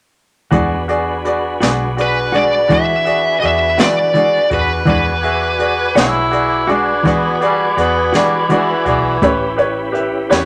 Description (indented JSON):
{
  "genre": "slow blues",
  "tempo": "55 BPM (dotted quarters)",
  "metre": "12/8",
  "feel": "straight",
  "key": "E mixolydian",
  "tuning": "A4 = 440 Hz",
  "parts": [
    { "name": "bright upright piano", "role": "accompaniment", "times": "0.5-10.5 s", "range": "F#4 to E5", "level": "-20 LUFS", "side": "equal", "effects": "none" },
    { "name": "clean electric guitar", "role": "accompaniment", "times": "0.5-10.5 s", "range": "E3 to B4", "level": "-21 LUFS", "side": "equal", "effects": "tremolo" },
    { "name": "tonewheel organ", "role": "sustained chords", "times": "0.5-10.5 s", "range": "C#4 to G#5", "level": "-25 LUFS", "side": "equal", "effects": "slow rotary speaker, chorus vibrato" },
    { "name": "vintage muted fingered electric bass", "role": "bass", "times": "0.5-10.5 s", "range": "A1 to E3", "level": "-26 LUFS", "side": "equal", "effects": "none" },
    { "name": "jazz brush drum kit", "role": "drums", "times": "0.5-10.5 s", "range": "hi-hat, kick drum, snare drum", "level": "-22 LUFS", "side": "equal", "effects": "none" },
    { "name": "smooth overdriven lead guitar", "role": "melody", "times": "2.0-5.9 s", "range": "B4 to E5", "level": "-17 LUFS", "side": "equal", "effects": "none" },
    { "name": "bright tenor saxophone", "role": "second line", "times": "6.0-9.6 s", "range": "E3 to E4", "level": "-19 LUFS", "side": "equal", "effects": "none" }
  ],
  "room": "moderate studio ambience, RT60 0.4 s",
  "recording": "none",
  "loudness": "-15 LUFS",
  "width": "mono",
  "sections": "0.5-10.5 A section",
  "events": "none",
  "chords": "0.5 E9; 9.2 A9"
}